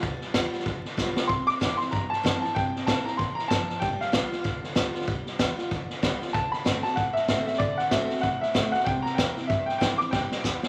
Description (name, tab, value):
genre	rockabilly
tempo	190 BPM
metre	4/4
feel	swing 59% on 8ths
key	G mixolydian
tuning	A4 = 439 Hz
part	picked steel-string acoustic guitar	accompaniment	0.0-10.7 s	G2 to F#4	-35 LUFS	equal	none
part	upright bass	bass	0.0-10.7 s	F#1 to C3	-40 LUFS	equal	none
part	vintage drum kit	drums	0.0-10.7 s	hi-hat, kick drum, snare drum	-30 LUFS	equal	none
part	clear upright piano	melody	1.3-10.7 s	D5 to D6	-30 LUFS	equal	none
room	moderate large studio reverb, RT60 1.4 s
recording	vinyl crackle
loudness	-27 LUFS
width	mono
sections	0.0-10.7 A section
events	drum fill 1.0-1.3, 10.1-10.7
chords	0.0 G7; 1.3 C7; 3.8 G7; 6.3 D7; 8.9 C7; 10.1 G7